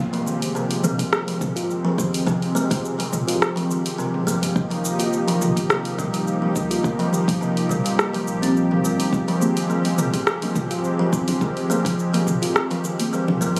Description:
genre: organic downtempo.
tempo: 105 BPM.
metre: 4/4.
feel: swing 53% on 16ths.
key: F minor.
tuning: A4 = 441 Hz.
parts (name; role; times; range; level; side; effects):
warm analog pad; sustained chords; 0.0-13.6 s; F3 to G4; -27 LUFS; equal; chorus, sidechain pumping.
round analog bass; bass; 0.0-13.6 s; Eb1 to F2; -36 LUFS; equal; sidechain pumping.
impact; sound effects; 0.0-2.3 s; none; -38 LUFS; equal; none.
kalimba; arpeggios; 0.1-13.6 s; C3 to F4; -26 LUFS; equal; tape echo.
deep house drum kit; drums; 0.1-13.6 s; hi-hat, rim click, shaker, toms; -28 LUFS; equal; none.
electronic kick drum; drums; 1.0-12.4 s; none; -27 LUFS; equal; none.
congas; percussion; 9.4-13.4 s; none; -30 LUFS; equal; none.
room: light reverb.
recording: recorded on a phone in the room, studio ambience.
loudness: -22 LUFS.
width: mono.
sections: 0.0-13.6 A section.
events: impact 0.0-2.3.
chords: 0.0 Fmadd9; 4.6 Ebadd9; 9.1 Fmadd9.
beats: 0.56 1.13 1.70 | 2.27 2.84 3.41 3.98 | 4.56 5.13 5.70 6.27 | 6.84 7.41 7.99 8.56 | 9.13 9.70 10.27 10.84 | 11.41 11.98 12.56 13.13.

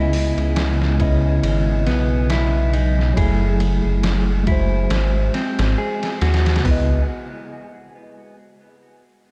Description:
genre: trip hop.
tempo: 69 BPM.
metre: 4/4.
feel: swing 57% on 16ths.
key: C# minor.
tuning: A4 = 440 Hz.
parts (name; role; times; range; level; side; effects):
mellow tine electric piano; accompaniment; 0.0-7.0 s; C#3 to D#5; -26 LUFS; equal; harmonic tremolo, tape echo.
mellow electric guitar; arpeggios; 0.0-7.1 s; B3 to G#4; -30 LUFS; equal; tape echo.
dark detuned saw bass; bass; 0.0-7.1 s; F#1 to D#2; -21 LUFS; equal; tube saturation.
wind-like tuned noise texture; texture; 0.0-6.7 s; G#3 to G#5; -39 LUFS; equal; built-in reverb, analog chorus.
trip hop sampler-style drum kit; drums; 0.1-6.9 s; hi-hat, kick drum, ride cymbal, snare drum, toms; -27 LUFS; equal; small room ambience.
room: moderate lush hall reverb, RT60 2.5 s.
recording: dreamy mix soaked in reverb.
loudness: -19 LUFS.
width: mono.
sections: 0.0-6.6 A section; 6.6-9.3 B section.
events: filter sweep on tine electric piano 0.0-6.6.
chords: 0.0 C#m9; 3.2 F#m9; 4.9 G#7; 6.6 C#m9.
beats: 0.56 1.43 2.30 | 3.17 4.04 4.91 5.78 | 6.65.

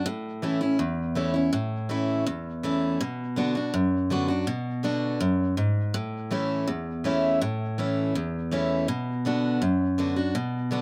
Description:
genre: country.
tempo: 163 BPM.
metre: 4/4.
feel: straight.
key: A major.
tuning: A4 = 440 Hz.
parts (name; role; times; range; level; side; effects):
picked steel-string acoustic guitar; solo; 0.0-10.8 s; E2 to F#4; -27 LUFS; equal; none.
room: little or no reverb.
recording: recorded outdoors, with no room sound.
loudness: -27 LUFS.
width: mono.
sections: 0.0-10.8 A section.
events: none.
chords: 0.1 A; 3.0 Bm; 5.9 A; 8.9 Bm.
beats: | 0.06 0.43 0.80 1.16 | 1.53 1.90 2.27 2.63 | 3.00 3.37 3.74 4.11 | 4.47 4.84 5.21 5.58 | 5.95 6.31 6.68 7.05 | 7.42 7.79 8.15 8.52 | 8.89 9.26 9.62 9.99 | 10.36 10.72.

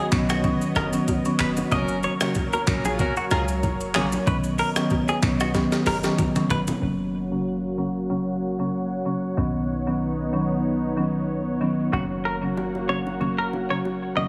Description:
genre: afrobeats.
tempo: 94 BPM.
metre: 4/4.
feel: swing 55% on 16ths.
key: F# major.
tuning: A4 = 440 Hz.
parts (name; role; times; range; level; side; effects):
warm analog pad; sustained chords; 0.0-14.3 s; F#3 to F#5; -33 LUFS; equal; chorus, low-pass filter.
direct-recorded clean electric guitar; riff; 0.0-6.6, 11.9-14.3 s; F#4 to D#5; -31 LUFS; equal; lush chorus, low-pass filter, digital delay.
buzzing marimba with medium mallets; accompaniment; 0.1-14.3 s; C#3 to C#4; -28 LUFS; equal; low-pass filter.
clean 808-style bass; bass; 0.1-14.3 s; E#1 to C#2; -33 LUFS; equal; none.
jungle sampler-style drum kit; drums; 0.1-6.8 s; handclaps, hi-hat, kick drum, rim click, shaker, snare drum, toms; -29 LUFS; equal; none.
bongos and congas; percussion; 0.1-6.8, 11.9-14.3 s; none; -36 LUFS; equal; none.
warm horn section; second line; 1.7-4.1 s; A#3 to C#5; -32 LUFS; equal; none.
room: moderate lush hall reverb, RT60 2.3 s.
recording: heavily compressed radio sound, multiband compression, studio reverb, faint mains hum.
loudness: -24 LUFS.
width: mono.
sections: 0.0-6.8 A section; 6.8-14.3 B section.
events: drum fill 5.5-6.8; filter sweep 6.8-14.3.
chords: 0.0 Badd9; 1.7 F#; 4.3 Badd9; 6.8 F#; 9.4 Badd9; 11.9 F#.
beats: 0.44 1.08 | 1.72 2.35 2.99 3.63 | 4.27 4.91 5.55 6.18 | 6.82 7.46 8.10 8.74 | 9.38 10.01 10.65 11.29 | 11.93 12.57 13.21 13.84.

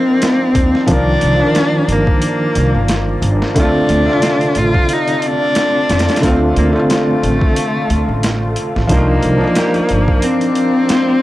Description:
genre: trip hop.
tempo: 90 BPM.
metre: 4/4.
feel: swing 56% on 16ths.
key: C dorian.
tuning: A4 = 440 Hz.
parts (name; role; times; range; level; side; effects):
rich cello; melody; 0.0-11.2 s; A3 to F4; -16 LUFS; left 1 dB; dub echo.
felt-muted upright piano; accompaniment; 0.0-11.2 s; C3 to Bb4; -17 LUFS; equal; harmonic tremolo, tape echo.
deep dark ambient pad; sustained chords; 0.0-11.2 s; A4 to D6; -26 LUFS; left 3 dB; chorus, built-in reverb.
boom bap sampler-style drum kit; drums; 0.2-11.1 s; hi-hat, kick drum, snare drum; -18 LUFS; equal; overdrive.
upright bass; bass; 0.6-10.1 s; G1 to F2; -17 LUFS; equal; none.
electric guitar at the edge of break-up; arpeggios; 8.9-11.2 s; C4 to C5; -27 LUFS; right 4 dB; tape echo.
room: small room reverb.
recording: dry, gritty hardware recording.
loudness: -12 LUFS.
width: side -16 dB against mid.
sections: 0.0-11.2 A section.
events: none.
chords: 0.0 Cm11; 3.6 Dm7; 8.9 Cm11.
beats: 0.23 | 0.90 1.56 2.23 2.90 | 3.56 4.23 4.90 5.56 | 6.23 6.90 7.56 8.23 | 8.90 9.56 10.23 10.90.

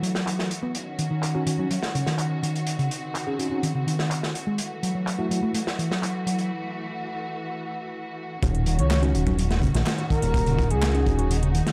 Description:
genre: breakbeat, breaks.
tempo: 125 BPM.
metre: 4/4.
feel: straight.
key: Eb dorian.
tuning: A4 = 439 Hz.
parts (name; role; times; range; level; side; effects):
rich studio string section; sustained chords; 0.0-11.7 s; Eb3 to Gb4; -36 LUFS; equal; sidechain pumping.
hollow-body short-scale picked electric bass; riff; 0.0-11.7 s; Db3 to Cb4; -29 LUFS; equal; tube saturation, vintage 12-bit sampler grit, low-pass filter, digital delay.
crunchy breakbeat drum kit; drums; 0.0-11.7 s; hi-hat, kick drum, snare drum; -31 LUFS; equal; high-pass filter on kick, high-pass filter on hats, high-pass filter on snare, high-pass filter on room.
garage drum kit; drums; 0.0-11.7 s; handclaps, hi-hat; -38 LUFS; equal; low-pass filter on hats, low-pass filter on snare.
tine electric piano; stabs; 1.3-5.5, 9.0-11.3 s; A3 to Ab4; -34 LUFS; equal; vintage 12-bit sampler grit, digital delay.
fat analog bass; bass; 8.4-11.6 s; Eb1 to Db2; -25 LUFS; equal; none.
breathy flute-like synth lead; melody; 8.8-11.4 s; Ab4 to Db5; -32 LUFS; equal; chorus, small speaker sound, digital delay.
room: light reverb, small room reverb.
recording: dark, warm production.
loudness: -25 LUFS.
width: mono.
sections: 0.0-8.4 A section; 8.4-11.7 B section.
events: break 6.5-8.4; drop 8.4-11.7.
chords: 0.0 Gbm7; 0.7 Ebm7; 4.6 Gbm7; 8.4 Ebm7.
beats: 0.27 | 0.75 1.23 1.71 2.19 | 2.67 3.15 3.63 4.11 | 4.59 5.07 5.55 6.03 | 6.51 6.99 7.47 7.95 | 8.43 8.91 9.39 9.87 | 10.35 10.83 11.31.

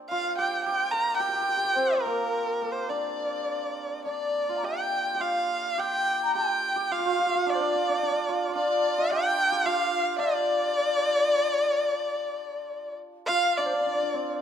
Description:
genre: chinese traditional, Chinese chamber ensemble.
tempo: 108 BPM.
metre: 4/4.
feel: rubato.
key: D jue mode.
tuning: A4 = 441 Hz.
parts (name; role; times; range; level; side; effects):
hammered dulcimer; second line; 0.0-14.4 s; Bb3 to Bb4; -31 LUFS; right 6 dB; none.
warm erhu; melody; 0.1-14.4 s; Bb4 to Bb5; -27 LUFS; right 1 dB; none.
mellow large dizi; second line; 0.1-14.4 s; Bb4 to Bb5; -29 LUFS; left 5 dB; none.
room: wet recital hall reverb, RT60 1.6 s.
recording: none.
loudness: -24 LUFS.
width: side -8 dB against mid.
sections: 0.0-4.6 A section; 4.6-13.6 B section.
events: none.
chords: none.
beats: | 0.11 0.65 1.20 1.75 | 2.31 2.88 3.46 4.05 | 4.64 5.21 5.79 6.35 | 6.91 7.46 8.01 8.55 | 9.10 9.65 10.19 10.74 | 11.29 11.85 12.41 12.99 | 13.57 14.15.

